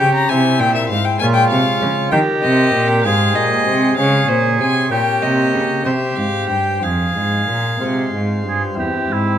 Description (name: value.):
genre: classical, baroque-style sonata movement with continuo.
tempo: 61-66 BPM (dotted quarters).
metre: 6/8.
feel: rubato.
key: F minor.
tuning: A4 = 438 Hz.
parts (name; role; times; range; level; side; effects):
rich violin; melody; 0.0-9.4 s; G4 to Bb5; -20 LUFS; left 4 dB; none.
warm oboe; second line; 0.0-9.4 s; E4 to Ab4; -20 LUFS; right 5 dB; none.
chamber organ, principal chorus; accompaniment; 0.0-9.4 s; E2 to Db5; -20 LUFS; left 2 dB; none.
rich cello; bass; 0.0-9.4 s; E2 to Eb3; -19 LUFS; right 1 dB; none.
room: moderate recital hall reverb, RT60 1.4 s.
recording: none.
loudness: -14 LUFS.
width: side -10 dB against mid.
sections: 0.0-8.8 A section.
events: none.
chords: 0.3 C; 1.2 Bbm7; 2.1 Eb; 3.0 Abmaj7; 4.0 Db5; 4.9 Gdim/Bb; 5.9 C5; 6.8 Fm; 8.8 C/E.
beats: 0.30 | 1.21 2.12 | 3.05 3.98 | 4.91 5.86 | 6.83 7.81 | 8.79.